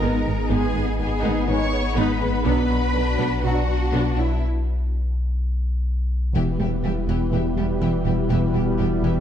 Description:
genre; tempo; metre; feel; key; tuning
cinematic, hybrid orchestral and electronic film score; 123 BPM; 4/4; straight; unclear; A4 = 440 Hz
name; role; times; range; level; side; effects
rich symphonic violin section; melody; 0.0-9.1 s; E5 to C#6; -36 LUFS; left 4 dB; none
rich studio violin section; second line; 0.0-9.1 s; B3 to G4; -32 LUFS; left 5 dB; none
clear symphonic viola section; accompaniment; 0.0-9.1 s; D3 to D#4; -29 LUFS; left 1 dB; none
warm analog pad; sustained chords; 0.0-9.2 s; B3 to D#5; -29 LUFS; equal; chorus
glassy wavetable pluck; arpeggios; 0.0-9.2 s; E3 to B4; -29 LUFS; equal; chorus
pure sine sub bass; bass; 0.0-9.2 s; E1 to B1; -24 LUFS; left 1 dB; none
rich symphonic double bass section; bass; 0.0-9.1 s; E1 to B1; -26 LUFS; right 3 dB; none
warm symphonic cello section; bass; 0.0-9.1 s; E2 to C#5; -30 LUFS; right 2 dB; none
dark French horn section; sustained chords; 0.5-9.2 s; B3 to E4; -31 LUFS; left 6 dB; none
warm trombone section; sustained chords; 0.5-9.2 s; B2 to G#3; -33 LUFS; right 4 dB; none
room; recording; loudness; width
moderate scoring stage reverb, RT60 1.8 s; dark, warm production; -20 LUFS; side -9 dB against mid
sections
0.0-6.4 A section; 6.4-9.2 B section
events
break 4.4-6.4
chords
0.0 G#m; 2.5 Bm; 6.4 Em

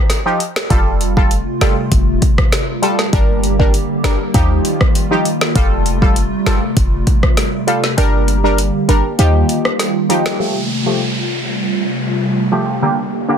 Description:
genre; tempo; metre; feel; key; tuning
dancehall; 99 BPM; 4/4; straight; unclear; A4 = 442 Hz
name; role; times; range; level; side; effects
synth brass stab; accompaniment; 0.0-13.4 s; D3 to Bb4; -18 LUFS; equal; chorus, phaser, low-pass filter
afro-pop drum kit; drums; 0.1-10.4 s; hi-hat, kick drum, rim click, snare drum; -15 LUFS; equal; overdrive
hollow soft pad; sustained chords; 0.9-13.4 s; C3 to G4; -19 LUFS; right 1 dB; ensemble chorus, low-pass filter
clean 808-style bass; bass; 0.7-9.4 s; F1 to Eb2; -16 LUFS; equal; none
downlifter; sound effects; 10.4-13.4 s; none; -24 LUFS; right 1 dB; none
room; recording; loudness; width
digital ambience; dense, heavily limited modern master; -13 LUFS; side -8 dB against mid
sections
0.0-10.4 A section; 10.4-13.4 B section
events
kick muted 8.0-10.4; filter sweep 10.4-13.4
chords
0.0 Ebadd9; 0.7 Fadd9; 3.1 Gm; 4.3 Ebadd9; 5.6 Fadd9; 8.0 Gm; 9.2 Ebadd9; 10.4 Fadd9; 12.8 Gm

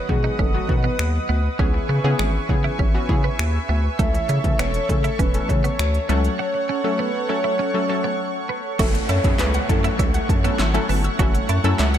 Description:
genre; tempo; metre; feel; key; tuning
dance-pop; 100 BPM; 4/4; straight; unclear; A4 = 443 Hz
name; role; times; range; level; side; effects
soft octave-layered synth lead; melody; 0.0-10.3 s; G#4 to E5; -27 LUFS; equal; chorus, ping-pong delay
soft supersaw; sustained chords; 0.0-12.0 s; A3 to D#6; -28 LUFS; right 1 dB; wide subtle chorus, sidechain pumping
wide unison pluck; accompaniment; 0.1-12.0 s; D#3 to A4; -27 LUFS; left 2 dB; sidechain pumping
twelve-string electric guitar; riff; 0.1-11.9 s; G#3 to F#4; -31 LUFS; right 8 dB; wide subtle chorus
round analog bass; bass; 0.1-12.0 s; E1 to C#3; -22 LUFS; equal; sidechain pumping
deep house drum kit; drums; 0.1-12.0 s; crash cymbal, finger snaps, handclaps, hi-hat, kick drum, snare drum; -22 LUFS; equal; none
wide unison pluck; arpeggios; 8.8-12.0 s; E5 to E6; -32 LUFS; right 1 dB; sidechain pumping, ping-pong delay
downlifter; sound effects; 8.8-12.0 s; none; -30 LUFS; equal; none
room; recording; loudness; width
light reverb, digital ambience; none; -18 LUFS; side -10 dB against mid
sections
0.0-8.8 A section; 8.8-12.0 B section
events
break 6.4-8.8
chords
0.0 B; 1.6 C#m7; 4.0 A; 6.1 F#m/C#; 8.8 F#m7

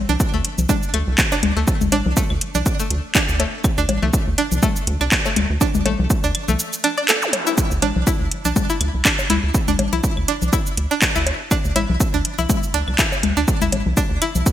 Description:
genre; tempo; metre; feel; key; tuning
minimal techno; 122 BPM; 4/4; swing 55% on 16ths; unclear; A4 = 440 Hz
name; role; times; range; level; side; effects
rubbery square bass; bass; 0.0-14.4 s; A1 to D2; -22 LUFS; equal; sidechain pumping
string-like resonator pluck; riff; 0.1-14.3 s; A3 to D5; -23 LUFS; right 1 dB; chorus, sidechain pumping, digital delay
electronic congas, toms, claves and bongos; percussion; 0.1-14.4 s; none; -25 LUFS; left 6 dB; gated reverb, digital delay
electronic kick drum; drums; 0.2-14.5 s; none; -21 LUFS; equal; overdrive
house drum kit; drums; 0.2-14.5 s; cabasa, handclaps, hi-hat; -21 LUFS; equal; overdrive, gated reverb
zap; sound effects; 7.2-7.3 s; none; -28 LUFS; equal; none
room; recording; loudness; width
light reverb, digital ambience; bright 1980s-style digital production; -16 LUFS; side -12 dB against mid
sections
0.0-14.5 A section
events
none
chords
0.0 D5

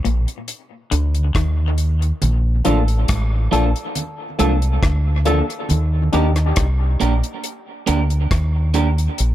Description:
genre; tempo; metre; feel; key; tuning
dub reggae; 69 BPM; 4/4; straight; unclear; A4 = 437 Hz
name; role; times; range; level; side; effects
semi-hollow electric guitar; riff; 0.0-1.6 s; Bb2 to Eb3; -28 LUFS; left 4 dB; dub echo
deep dub fingered electric bass; bass; 0.1-9.3 s; A1 to Eb2; -17 LUFS; equal; none
deep reggae drum kit; drums; 0.1-9.3 s; hi-hat, kick drum, rim click; -23 LUFS; equal; none
congas; percussion; 2.2-5.9 s; none; -28 LUFS; right 3 dB; dub echo
percussive organ stab; stabs; 2.6-6.3 s; Bb3 to A4; -25 LUFS; left 7 dB; chorus, dub echo
electric guitar at the edge of break-up; accompaniment; 2.7-8.9 s; F3 to Bb4; -24 LUFS; right 7 dB; dub echo
room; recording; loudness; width
little or no reverb; echo-heavy mix; -16 LUFS; side -13 dB against mid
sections
0.0-9.3 A section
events
break 0.0-2.2; part muted 5.7-9.3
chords
0.0 Eb5; 2.2 Bbmaj7; 5.7 Ebmaj7

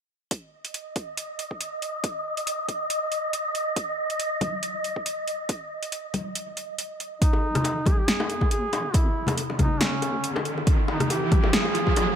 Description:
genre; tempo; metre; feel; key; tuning
deep dubstep; 139 BPM; 4/4; swing 55% on 16ths, half-time; unclear; A4 = 438 Hz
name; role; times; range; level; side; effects
deep house drum kit; drums; 0.3-12.1 s; hi-hat, rim click, snare drum; -28 LUFS; equal; overdrive
electronic kick drum; drums; 0.3-11.9 s; none; -23 LUFS; equal; overdrive, high-pass filter on kick
wind-like tuned noise texture; texture; 0.8-7.2 s; D#5; -29 LUFS; equal; built-in reverb
congas and bongos; percussion; 4.4-12.1 s; none; -30 LUFS; left 3 dB; none
warm duduk; melody; 7.2-12.2 s; C#4 to G#4; -28 LUFS; right 1 dB; dub echo
deep soft wobble bass; bass; 7.2-12.2 s; G#1 to D#2; -37 LUFS; equal; chorus, high-pass filter
riser; sound effects; 8.8-12.2 s; none; -30 LUFS; right 2 dB; none
room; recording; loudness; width
light reverb; none; -23 LUFS; side -8 dB against mid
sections
0.3-7.2 A section; 7.2-12.2 B section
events
build-up 7.2-12.2; riser 8.8-12.2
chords
0.3 N.C.; 7.2 G#5

